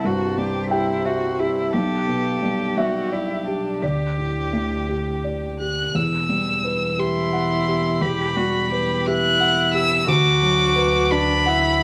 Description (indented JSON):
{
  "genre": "neoclassical piano and strings",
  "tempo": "58 BPM (dotted quarters)",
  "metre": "6/8",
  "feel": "rubato",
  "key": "E minor",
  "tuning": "A4 = 440 Hz",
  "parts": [
    { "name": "rich violin", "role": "melody", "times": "0.0-11.8 s", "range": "G4 to F#6", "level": "-26 LUFS", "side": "equal", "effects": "none" },
    { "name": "warm cello", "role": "second line", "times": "0.0-11.8 s", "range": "D4 to G4", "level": "-27 LUFS", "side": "equal", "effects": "none" },
    { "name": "felt-muted upright piano", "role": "accompaniment", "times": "0.0-11.8 s", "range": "B1 to A5", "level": "-25 LUFS", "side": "equal", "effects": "none" },
    { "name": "warm double bass", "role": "bass", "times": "0.0-11.8 s", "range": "E1 to D2", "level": "-33 LUFS", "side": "equal", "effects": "none" }
  ],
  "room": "moderate large studio reverb, RT60 1.0 s",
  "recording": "none",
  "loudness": "-21 LUFS",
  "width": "mono",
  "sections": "0.0-6.0 A section; 6.0-11.8 B section",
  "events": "none",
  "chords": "0.0 C; 1.7 G/B; 3.8 Dsus4; 6.0 Emadd9; 10.1 Bm/D"
}